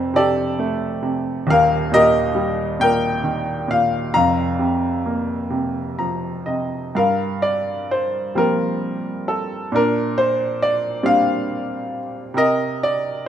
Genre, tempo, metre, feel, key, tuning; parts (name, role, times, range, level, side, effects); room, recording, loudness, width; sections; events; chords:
classical, lyrical solo piano; 42-46 BPM (dotted quarters); 6/8; rubato; G minor; A4 = 440 Hz
clear baby grand piano; solo; 0.0-13.3 s; Eb1 to Bb5; -18 LUFS; equal
light reverb; minimal, uncompressed stereo recording; -18 LUFS; side -10 dB against mid
0.0-7.0 A section; 7.0-13.3 B section
grand piano fill 5.5-7.0
0.0 Fadd9; 1.5 Eb; 4.1 Fsus4; 7.0 Gm7; 9.7 Bb69; 12.3 Cm7